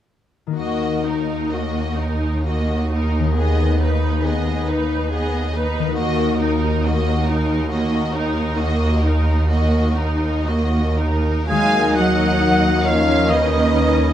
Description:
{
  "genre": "classical",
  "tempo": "37-47 BPM (dotted quarters)",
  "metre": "6/8",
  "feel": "rubato",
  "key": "Eb minor",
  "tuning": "A4 = 439 Hz",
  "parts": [
    { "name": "concert harp", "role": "arpeggios", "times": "0.5-14.1 s", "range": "Eb3 to Eb5", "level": "-25 LUFS", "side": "left 10 dB", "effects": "none" },
    { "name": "clear symphonic violin section", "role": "melody", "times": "0.6-14.1 s", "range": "Bb4 to Ab5", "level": "-27 LUFS", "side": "left 1 dB", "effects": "none" },
    { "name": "warm symphonic violin section", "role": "second line", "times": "0.6-14.1 s", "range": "Eb4 to F5", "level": "-27 LUFS", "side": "left 1 dB", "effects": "none" },
    { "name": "rich symphonic viola section", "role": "accompaniment", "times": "0.6-14.1 s", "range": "Gb3 to Eb4", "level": "-24 LUFS", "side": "right 2 dB", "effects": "none" },
    { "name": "warm studio double bass section", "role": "bass", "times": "0.6-14.1 s", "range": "Eb2", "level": "-22 LUFS", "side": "right 1 dB", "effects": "none" },
    { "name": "warm symphonic cello section", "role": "bass", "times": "0.6-14.1 s", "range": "Eb2 to Ab3", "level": "-23 LUFS", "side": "right 1 dB", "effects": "none" },
    { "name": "clear oboe", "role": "second line", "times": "11.5-14.1 s", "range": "Eb5 to Ab5", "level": "-24 LUFS", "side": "right 2 dB", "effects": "none" },
    { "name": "mellow clarinet", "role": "second line", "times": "11.5-14.1 s", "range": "Eb4 to Ab4", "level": "-27 LUFS", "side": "left 1 dB", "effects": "none" },
    { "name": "mellow flute section", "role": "second line", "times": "11.5-14.1 s", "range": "Eb5 to Ab5", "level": "-25 LUFS", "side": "right 2 dB", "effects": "none" },
    { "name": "mellow French horn section", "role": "sustained chords", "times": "11.5-14.1 s", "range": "Bb3 to Eb4", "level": "-24 LUFS", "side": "left 2 dB", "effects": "none" },
    { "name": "warm bassoon", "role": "accompaniment", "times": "12.9-14.1 s", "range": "Eb4", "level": "-25 LUFS", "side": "equal", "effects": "none" }
  ],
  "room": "moderate recital hall reverb, RT60 1.7 s",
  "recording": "none",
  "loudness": "-16 LUFS",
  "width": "side -11 dB against mid",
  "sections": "0.6-11.5 A section; 11.5-14.1 B section",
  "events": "none",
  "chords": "0.6 Ebm; 3.4 Abm/Eb; 6.0 Ebm"
}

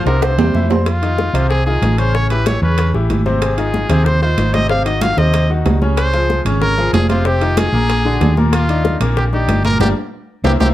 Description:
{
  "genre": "latin, salsa",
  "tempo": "188 BPM",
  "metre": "4/4",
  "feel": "straight",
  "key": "F minor",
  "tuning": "A4 = 440 Hz",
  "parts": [
    { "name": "bright trumpet", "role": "melody", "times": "0.0-10.7 s", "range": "F4 to F5", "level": "-20 LUFS", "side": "equal", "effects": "none" },
    { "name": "dark trombone section", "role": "second line", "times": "0.0-0.6 s", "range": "C3", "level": "-26 LUFS", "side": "right 2 dB", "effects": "none" },
    { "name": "bright grand piano", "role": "accompaniment", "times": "0.0-10.7 s", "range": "Bb2 to C6", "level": "-20 LUFS", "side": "left 3 dB", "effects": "none" },
    { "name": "hollow-body short-scale fingered electric bass", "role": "bass", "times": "0.1-10.7 s", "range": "F1 to F2", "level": "-16 LUFS", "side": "equal", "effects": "none" },
    { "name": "bongos", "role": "percussion", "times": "0.1-10.7 s", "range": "none", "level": "-25 LUFS", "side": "left 5 dB", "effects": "none" },
    { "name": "congas", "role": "percussion", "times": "0.1-10.7 s", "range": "none", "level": "-22 LUFS", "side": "right 1 dB", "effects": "none" },
    { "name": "timbales", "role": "percussion", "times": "0.1-10.7 s", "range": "none", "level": "-24 LUFS", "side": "right 5 dB", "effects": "none" }
  ],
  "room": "light reverb",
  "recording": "dark, warm production",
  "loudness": "-13 LUFS",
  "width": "side -14 dB against mid",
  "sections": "0.9-10.7 A section",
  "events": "drum fill 0.0-0.9, 5.0-6.0, 9.8-10.7; band accent 9.8-10.7",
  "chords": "0.2 C; 0.9 Fm7; 2.1 A9; 3.4 Ab6; 4.7 Ab7; 6.0 Db6; 7.3 Fm9; 7.9 Bbaug7; 8.5 Ebmaj9; 9.8 Gm"
}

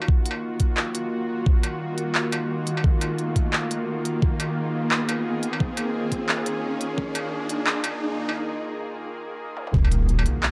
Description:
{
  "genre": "half-time drum and bass",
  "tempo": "174 BPM",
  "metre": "4/4",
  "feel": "swing 60% on 16ths, half-time",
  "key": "Eb minor",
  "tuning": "A4 = 440 Hz",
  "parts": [
    { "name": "bowed-like drone", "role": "sustained chords", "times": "0.0-10.5 s", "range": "Eb3 to Ab4", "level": "-30 LUFS", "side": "equal", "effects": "built-in reverb, sidechain pumping" },
    { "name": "industrial drum kit", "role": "drums", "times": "0.0-10.5 s", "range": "handclaps, hi-hat, struck metal, toms", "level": "-29 LUFS", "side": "equal", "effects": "high-pass filter on hats, high-pass filter on snare, high-pass filter on perc, high-pass filter on toms, high-pass filter on room" },
    { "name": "riser and impact", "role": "sound effects", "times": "0.9-10.5 s", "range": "none", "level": "-34 LUFS", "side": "equal", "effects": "none" },
    { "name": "electronic kick drum", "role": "drums", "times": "0.1-7.1, 9.7-9.8 s", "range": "none", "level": "-23 LUFS", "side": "equal", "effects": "overdrive" },
    { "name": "saturated sub bass", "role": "bass", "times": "9.7-10.2 s", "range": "Eb1", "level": "-23 LUFS", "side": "equal", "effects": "none" }
  ],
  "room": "light reverb",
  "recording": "dark, warm production, high-pass filter",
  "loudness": "-25 LUFS",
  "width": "mono",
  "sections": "0.0-9.7 A section",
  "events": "build-up 0.0-9.7; riser 0.9-8.4; break 8.4-9.7; drum fill 9.6; impact 9.7-10.5",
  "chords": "0.0 Ebmadd9"
}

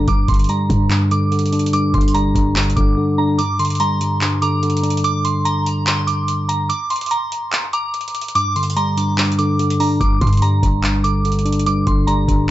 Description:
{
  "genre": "hip hop, trap",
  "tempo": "145 BPM",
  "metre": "4/4",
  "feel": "half-time",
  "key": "G minor",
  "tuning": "A4 = 442 Hz",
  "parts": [
    { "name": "soft synth bell", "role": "melody", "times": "0.0-12.5 s", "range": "Bb5 to D6", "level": "-22 LUFS", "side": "right 2 dB", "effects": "chorus, low-pass filter, digital delay" },
    { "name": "mellow tine electric piano", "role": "accompaniment", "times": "0.0-12.5 s", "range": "G2 to D4", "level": "-18 LUFS", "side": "equal", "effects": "low-pass filter" },
    { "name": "warm 808-style bass", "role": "bass", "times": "0.0-3.0, 10.0-12.5 s", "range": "G1 to G2", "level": "-20 LUFS", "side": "equal", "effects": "none" },
    { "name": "booming analog drum machine", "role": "drums", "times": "0.1-12.5 s", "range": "handclaps, hi-hat, kick drum", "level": "-22 LUFS", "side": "equal", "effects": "overdrive" },
    { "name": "soft synth bell", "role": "second line", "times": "3.4-10.0 s", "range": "Bb5 to D6", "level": "-26 LUFS", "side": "left 2 dB", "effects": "chorus, phaser, digital delay" }
  ],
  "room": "digital ambience",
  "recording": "nothing above 7.8 kHz",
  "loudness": "-15 LUFS",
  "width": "side -14 dB against mid",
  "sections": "0.0-12.5 A section",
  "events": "drums muted 3.0-3.4; break 3.4-10.0",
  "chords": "0.0 Gm"
}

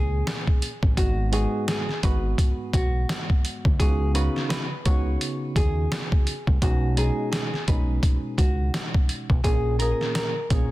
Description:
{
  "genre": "hip hop, boom-bap hip-hop",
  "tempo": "85 BPM",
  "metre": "4/4",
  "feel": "swing 60% on 16ths",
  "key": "G# minor",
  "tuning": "A4 = 440 Hz",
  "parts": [
    { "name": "nylon-string guitar", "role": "melody", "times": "0.0-10.7 s", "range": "F#4 to C#5", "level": "-31 LUFS", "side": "equal", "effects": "high-pass filter, low-pass filter, ping-pong delay" },
    { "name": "mellow tine electric piano", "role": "accompaniment", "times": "0.0-10.7 s", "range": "G#2 to G#4", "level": "-30 LUFS", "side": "right 1 dB", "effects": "medium stereo tremolo, cassette tape, high-pass filter, low-pass filter" },
    { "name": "deep dub fingered electric bass", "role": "bass", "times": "0.0-10.7 s", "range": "G#1 to D#2", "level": "-24 LUFS", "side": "equal", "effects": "none" },
    { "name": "trip hop sampler-style drum kit", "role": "drums", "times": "0.3-10.7 s", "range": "hi-hat, kick drum, snare drum", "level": "-23 LUFS", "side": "equal", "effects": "none" }
  ],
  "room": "little or no reverb",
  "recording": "dense, heavily limited modern master",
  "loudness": "-21 LUFS",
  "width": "side -17 dB against mid",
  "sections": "0.0-10.7 A section",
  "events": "none",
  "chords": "0.0 A#m7; 1.0 G#m7; 3.8 C#9sus4; 6.6 B69; 9.4 A#m7"
}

